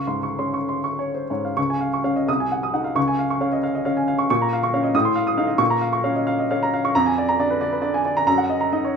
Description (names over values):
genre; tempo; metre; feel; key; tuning
classical, romantic character piece for solo piano; 63-93 BPM (dotted quarters); 6/8; rubato; Db major; A4 = 440 Hz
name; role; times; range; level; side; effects
clear upright piano; solo; 0.0-9.0 s; C2 to Eb6; -19 LUFS; equal; none
room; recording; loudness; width
light reverb; minimal, uncompressed stereo recording; -19 LUFS; side -6 dB against mid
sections
0.0-1.6 A section; 1.6-9.0 B section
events
none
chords
0.0 Db; 2.3 Ab7/C; 3.0 Db; 4.3 Bbm; 4.9 F7/A; 5.6 Bbm; 6.9 Bb7/F; 8.3 Ebm/Gb